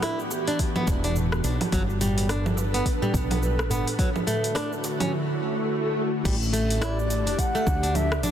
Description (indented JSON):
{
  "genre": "organic downtempo",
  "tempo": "106 BPM",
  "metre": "4/4",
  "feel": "swing 59% on 16ths",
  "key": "unclear",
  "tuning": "A4 = 439 Hz",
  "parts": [
    { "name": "ethereal airy pad", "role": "sustained chords", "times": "0.0-8.3 s", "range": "D3 to B4", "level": "-29 LUFS", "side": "right 1 dB", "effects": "ensemble chorus, built-in reverb, vintage 12-bit sampler grit, sidechain pumping" },
    { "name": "flamenco guitar", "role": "arpeggios", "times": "0.0-8.3 s", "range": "F#3 to E4", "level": "-30 LUFS", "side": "equal", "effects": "tape echo" },
    { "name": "deep house drum kit", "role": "drums", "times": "0.0-8.3 s", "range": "cabasa, congas, crash cymbal, hi-hat, rim click", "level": "-30 LUFS", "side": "right 1 dB", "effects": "overdrive" },
    { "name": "darbuka", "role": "percussion", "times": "0.3-5.0 s", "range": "none", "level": "-34 LUFS", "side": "left 1 dB", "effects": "none" },
    { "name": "electronic kick drum", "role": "drums", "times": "0.6-7.8 s", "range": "none", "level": "-26 LUFS", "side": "equal", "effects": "overdrive" },
    { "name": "woody fretless electric bass", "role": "bass", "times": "0.9-8.3 s", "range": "E1 to D2", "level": "-26 LUFS", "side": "equal", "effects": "sidechain pumping" },
    { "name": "swell", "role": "sound effects", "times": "5.3-6.3 s", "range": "none", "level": "-33 LUFS", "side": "equal", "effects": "none" },
    { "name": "breathy bansuri", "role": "melody", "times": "6.8-8.3 s", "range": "D5 to F#5", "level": "-28 LUFS", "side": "equal", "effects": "none" }
  ],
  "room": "light reverb",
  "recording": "dense, heavily limited modern master",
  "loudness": "-22 LUFS",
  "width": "side -10 dB against mid",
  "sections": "0.0-6.3 A section; 6.3-8.3 B section",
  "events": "swell 5.3-6.3",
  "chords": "0.0 Em7; 1.7 G; 4.0 D; 6.3 A7sus4"
}